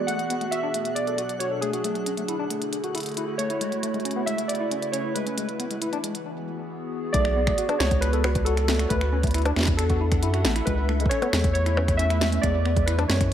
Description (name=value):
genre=IDM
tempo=136 BPM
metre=4/4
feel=straight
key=B dorian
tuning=A4 = 439 Hz
part: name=warbly lo-fi synth keys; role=melody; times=0.0-13.3 s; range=G#4 to F#5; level=-28 LUFS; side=right 1 dB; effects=chorus, analog delay, shimmer reverb
part: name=warbly tape-like pad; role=sustained chords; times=0.0-13.3 s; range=B2 to F#5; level=-31 LUFS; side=equal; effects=chorus, built-in reverb, phaser, shimmer reverb
part: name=twinkling granular texture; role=texture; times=0.0-6.3 s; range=F#4 to F#5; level=-43 LUFS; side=left 1 dB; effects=built-in reverb, shimmer reverb
part: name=tine electric piano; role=arpeggios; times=0.1-13.2 s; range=G#3 to A4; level=-31 LUFS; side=left 3 dB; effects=medium stereo tremolo, low-pass filter, analog delay, shimmer reverb
part: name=glitchy drum kit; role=drums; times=0.1-13.3 s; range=finger snaps, hi-hat, percussion blips, snare drum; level=-29 LUFS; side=equal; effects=analog delay
part: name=round analog bass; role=bass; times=7.1-13.3 s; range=A1 to F#2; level=-24 LUFS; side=equal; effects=none
part: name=electronic kick drum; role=drums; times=7.1-13.3 s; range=none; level=-26 LUFS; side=equal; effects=none
room=light reverb, digital ambience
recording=echo-heavy mix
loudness=-22 LUFS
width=side -10 dB against mid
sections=0.0-7.1 A section; 7.1-13.3 B section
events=break 6.3-7.1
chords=0.1 Bm7; 1.8 Dmaj9; 3.6 Amaj9/C#; 5.4 Eadd9; 7.1 Bm7; 8.9 Dmaj9; 10.7 Amaj9/C#; 12.4 E9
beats=| 0.08 0.52 0.96 1.41 | 1.85 2.29 2.73 3.17 | 3.61 4.05 4.49 4.94 | 5.38 5.82 6.26 6.70 | 7.14 7.58 8.02 8.46 | 8.91 9.35 9.79 10.23 | 10.67 11.11 11.55 11.99 | 12.44 12.88 13.32